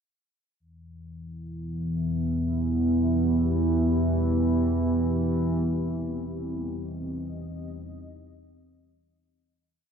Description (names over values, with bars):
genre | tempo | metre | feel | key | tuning
dark ambient drone | free time | none | none | E harmonic minor | A4 = 439 Hz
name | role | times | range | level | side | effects
deep dark ambient pad | sustained chords | 1.8-9.8 s | B3 to E5 | -28 LUFS | right 3 dB | chorus, built-in reverb
analog drone | drone | 1.1-9.9 s | E2 to E3 | -27 LUFS | left 1 dB | chorus
room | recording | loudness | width
wet spring reverb, RT60 2.3 s | none | -24 LUFS | side -7 dB against mid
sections
0.6-9.8 A section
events
fade-out 5.2-9.8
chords
0.6 Em; 5.2 Cm